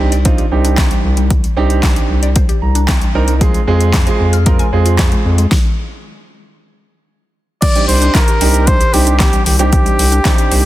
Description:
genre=dance-pop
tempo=114 BPM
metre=4/4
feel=straight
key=C minor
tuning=A4 = 440 Hz
part: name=warm grand piano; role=accompaniment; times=0.0-10.6 s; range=Ab3 to Bb5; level=-19 LUFS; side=right 5 dB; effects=sidechain pumping
part: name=round analog bass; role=bass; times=0.0-10.7 s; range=C2 to F2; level=-14 LUFS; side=equal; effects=sidechain pumping
part: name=mallet-like synth pluck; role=arpeggios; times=0.1-10.6 s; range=Eb3 to F6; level=-25 LUFS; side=left 6 dB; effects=chorus, sidechain pumping, digital delay
part: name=deep house drum kit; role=drums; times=0.1-10.6 s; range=crash cymbal, handclaps, hi-hat, kick drum, shaker, snare drum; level=-14 LUFS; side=equal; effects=overdrive
part: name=clear flugelhorn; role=melody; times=7.6-10.7 s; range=G4 to D5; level=-17 LUFS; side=equal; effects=digital delay
room=light reverb, digital ambience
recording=dense, heavily limited modern master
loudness=-10 LUFS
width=side -15 dB against mid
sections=0.0-7.6 A section; 7.6-10.7 B section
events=grand piano fill 2.4-3.4; stop 5.5-7.6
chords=0.0 Cmadd9; 3.4 Fm; 7.6 Cmadd9

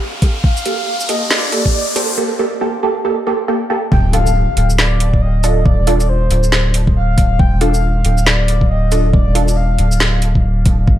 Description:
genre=deep dubstep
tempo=138 BPM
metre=4/4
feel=swing 60% on 16ths, half-time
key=D phrygian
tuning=A4 = 440 Hz
part: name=riser and impact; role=sound effects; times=0.0-5.7 s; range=none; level=-22 LUFS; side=left 1 dB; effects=none
part: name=electronic kick drum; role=drums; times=0.2-11.0 s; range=none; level=-13 LUFS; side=equal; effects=none
part: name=garage drum kit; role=drums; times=0.2-10.8 s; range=hi-hat, shaker, snare drum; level=-18 LUFS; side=equal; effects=overdrive
part: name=breathy flute-like synth lead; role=melody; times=0.4-10.2 s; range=C5 to G5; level=-22 LUFS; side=left 1 dB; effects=tremolo, wide subtle chorus, dub echo
part: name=filtered dub chord stab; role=stabs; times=0.7-9.5 s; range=Bb3 to A4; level=-20 LUFS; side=right 3 dB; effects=phaser, wide subtle chorus, dub echo
part: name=soft dub sub bass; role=bass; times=3.9-11.0 s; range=D1 to G1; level=-14 LUFS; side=equal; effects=none
room=light reverb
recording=none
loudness=-12 LUFS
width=side -12 dB against mid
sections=0.0-3.9 A section; 3.9-11.0 B section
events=build-up 0.0-3.9; riser 0.0-2.2; filter sweep on synth stab 0.0-3.9; drop 3.9-11.0; impact 3.9-5.7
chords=0.0 Gmadd9; 3.9 Dm

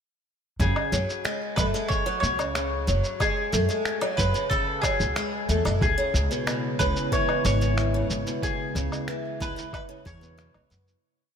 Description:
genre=folktronica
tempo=92 BPM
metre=4/4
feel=straight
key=C# minor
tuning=A4 = 440 Hz
part: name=mandolin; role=melody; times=0.6-10.7 s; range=G#4 to C#5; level=-29 LUFS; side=left 1 dB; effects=ping-pong delay
part: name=picked acoustic archtop guitar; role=arpeggios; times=0.6-10.9 s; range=B2 to E4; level=-29 LUFS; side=equal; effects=lush chorus, ping-pong delay
part: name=upright bass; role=bass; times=0.6-10.9 s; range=F#1 to F#2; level=-26 LUFS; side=equal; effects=none
part: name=electronic kick drum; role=drums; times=0.6-10.2 s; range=none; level=-30 LUFS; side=equal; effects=none
part: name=electronic shaker, woodblock and finger snaps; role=drums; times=0.6-11.0 s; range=none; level=-32 LUFS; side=equal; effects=none
part: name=warbly tape-like pad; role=sustained chords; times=5.8-11.0 s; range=C#3 to E4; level=-33 LUFS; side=left 1 dB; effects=chorus, built-in reverb
room=moderate cathedral reverb, RT60 4.7 s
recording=dreamy mix soaked in reverb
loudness=-23 LUFS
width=side -7 dB against mid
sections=0.6-11.0 groove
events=fade-out 7.6-11.0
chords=0.6 F#sus2; 5.8 C#m7

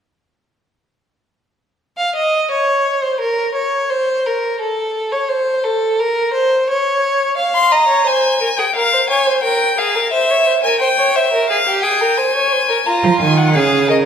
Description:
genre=classical, baroque-style fugue for string quartet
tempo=87 BPM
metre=4/4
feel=straight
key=unclear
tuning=A4 = 440 Hz
part: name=rich violin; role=second line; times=2.0-14.1 s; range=F4 to F5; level=-16 LUFS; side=equal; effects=none
part: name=rich violin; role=melody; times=7.5-14.0 s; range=Eb5 to C6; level=-14 LUFS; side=left 2 dB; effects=none
part: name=rich cello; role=bass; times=13.0-14.1 s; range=Db3 to F3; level=-13 LUFS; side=right 4 dB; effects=none
room=wet scoring stage reverb, RT60 1.8 s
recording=none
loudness=-13 LUFS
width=side -8 dB against mid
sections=1.8-14.1 A section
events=none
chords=1.8 N.C.; 7.4 Fm; 8.8 Gm7/Bb; 10.1 C7; 11.5 Fm; 12.9 Bbm

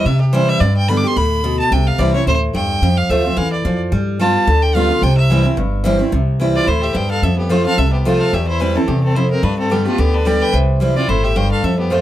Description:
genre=bluegrass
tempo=218 BPM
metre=4/4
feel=swing 55% on 8ths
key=C major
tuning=A4 = 444 Hz
part: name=clear fiddle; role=melody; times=0.0-12.0 s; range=F4 to D6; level=-20 LUFS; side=right 1 dB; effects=none
part: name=picked steel-string acoustic guitar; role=accompaniment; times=0.0-12.0 s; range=E2 to G4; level=-17 LUFS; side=equal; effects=none
part: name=upright bass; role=bass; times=0.1-12.0 s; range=G1 to C3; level=-17 LUFS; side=equal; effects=none
part: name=clear fiddle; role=second line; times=6.5-12.0 s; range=A3 to C5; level=-25 LUFS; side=left 5 dB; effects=none
room=small room ambience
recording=dry, close 1970s-style studio recording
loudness=-13 LUFS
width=side -13 dB against mid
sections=0.0-6.1 A section; 6.1-12.0 B section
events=fiddle solo 0.0-6.1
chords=0.0 C; 0.6 G; 1.7 C; 2.8 F; 3.9 G7; 5.0 C; 7.2 F; 8.3 C/E; 9.4 G; 10.5 C

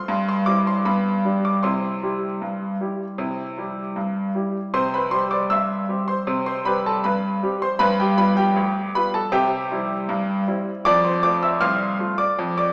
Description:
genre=ragtime piano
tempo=78 BPM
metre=2/4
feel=straight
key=C major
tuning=A4 = 440 Hz
part: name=bright baby grand piano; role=solo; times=0.0-12.7 s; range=C2 to F6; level=-22 LUFS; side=equal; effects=none
room=wet recital hall reverb, RT60 1.6 s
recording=recorded in a church or concert hall, small speaker sound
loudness=-22 LUFS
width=mono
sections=0.0-4.7 A section; 4.7-12.7 A section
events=none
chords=0.1 C/G; 0.9 G; 1.6 C; 7.8 G7; 9.3 C; 10.9 F

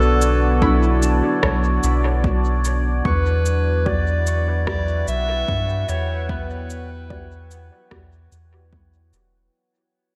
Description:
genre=ambient dub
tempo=74 BPM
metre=4/4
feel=swing 59% on 16ths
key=unclear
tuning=A4 = 440 Hz
part: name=mellow clarinet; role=melody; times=0.0-7.9 s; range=A4 to E5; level=-28 LUFS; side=equal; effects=dub echo
part: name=deep dark ambient pad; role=sustained chords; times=0.0-9.5 s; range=B3 to G5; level=-30 LUFS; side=equal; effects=chorus, built-in reverb
part: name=concert harp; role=arpeggios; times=0.0-9.4 s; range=B3 to C#6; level=-32 LUFS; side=equal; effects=dub echo
part: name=soft dub sub bass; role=bass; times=0.0-9.5 s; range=E1 to G2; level=-23 LUFS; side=equal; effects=none
part: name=drifting glass-harmonics texture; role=texture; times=0.0-9.6 s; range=F#3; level=-32 LUFS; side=equal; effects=chorus, built-in reverb
part: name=electronic cabasa and rim click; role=drums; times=0.2-9.3 s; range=none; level=-31 LUFS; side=equal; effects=small room ambience, dub echo
part: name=filtered dub chord stab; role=stabs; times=0.6-8.2 s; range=D4 to D5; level=-32 LUFS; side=equal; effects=none
part: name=electronic kick drum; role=drums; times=0.6-8.9 s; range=none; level=-27 LUFS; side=equal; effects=overdrive, small room ambience
room=light reverb, digital ambience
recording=none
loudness=-20 LUFS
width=mono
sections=0.0-9.5 A section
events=fade-out 0.9-9.5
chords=0.0 Bm9; 3.1 Em9

